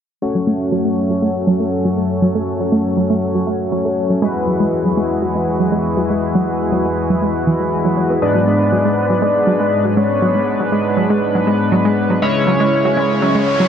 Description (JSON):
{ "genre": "house", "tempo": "120 BPM", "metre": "4/4", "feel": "straight", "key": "F# minor", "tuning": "A4 = 441 Hz", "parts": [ { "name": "lush unison pad", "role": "sustained chords", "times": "0.2-13.7 s", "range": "E2 to C#5", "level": "-21 LUFS", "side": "right 1 dB", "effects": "chorus" }, { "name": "chorused polysynth", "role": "stabs", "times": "0.2-13.7 s", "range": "G#2 to C#5", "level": "-18 LUFS", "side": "left 2 dB", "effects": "digital delay" }, { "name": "wide unison pluck", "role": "arpeggios", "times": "0.4-13.6 s", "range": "E3 to B3", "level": "-19 LUFS", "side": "right 1 dB", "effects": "digital delay" }, { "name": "soft octave-layered synth lead", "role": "melody", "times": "8.2-13.7 s", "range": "C#5 to D5", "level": "-19 LUFS", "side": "left 1 dB", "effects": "chorus, phaser, digital delay" }, { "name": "riser", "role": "sound effects", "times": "12.7-13.7 s", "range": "none", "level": "-27 LUFS", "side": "right 1 dB", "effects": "none" } ], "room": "moderate huge ambient reverb, RT60 8.4 s", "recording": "low-pass filter", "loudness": "-14 LUFS", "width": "side -8 dB against mid", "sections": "0.2-13.7 A section", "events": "filter sweep on synth pluck 0.2-13.7; filter sweep 0.2-13.7; riser 12.7-13.7", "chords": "0.2 F#m; 4.2 Eadd9; 8.2 G#dim; 12.2 C#m" }